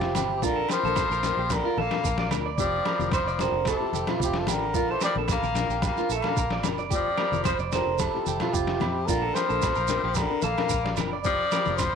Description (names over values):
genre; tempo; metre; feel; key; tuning
highlife guitar band; 111 BPM; 4/4; straight; unclear; A4 = 440 Hz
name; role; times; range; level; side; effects
breathy trumpet; melody; 0.0-11.9 s; G4 to F5; -29 LUFS; equal; none
bright tenor saxophone; second line; 0.0-11.9 s; C3 to Bb3; -31 LUFS; left 11 dB; slapback echo
electric guitar at the edge of break-up; arpeggios; 0.0-11.8 s; F4 to D5; -31 LUFS; right 13 dB; slapback echo
fingered electric bass; bass; 0.0-11.9 s; F1 to F2; -33 LUFS; right 1 dB; none
trip hop sampler-style drum kit; drums; 0.0-11.9 s; kick drum, snare drum; -31 LUFS; left 3 dB; overdrive
agogo bells; percussion; 0.1-11.9 s; none; -36 LUFS; right 12 dB; none
flamenco guitar; accompaniment; 0.2-11.8 s; F3 to Bb4; -35 LUFS; left 14 dB; none
congas; percussion; 0.2-11.8 s; none; -36 LUFS; left 7 dB; none
shekere; percussion; 0.2-11.9 s; none; -36 LUFS; right 8 dB; none
room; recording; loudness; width
light reverb, small room reverb; 1960s-style stereo with parts hard left and right; -23 LUFS; side -6 dB against mid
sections
0.0-11.9 A section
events
none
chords
0.4 Bbadd9; 2.6 Fsus2; 4.8 Bbadd9; 6.9 Fsus2; 9.1 Bbadd9; 11.3 Fsus2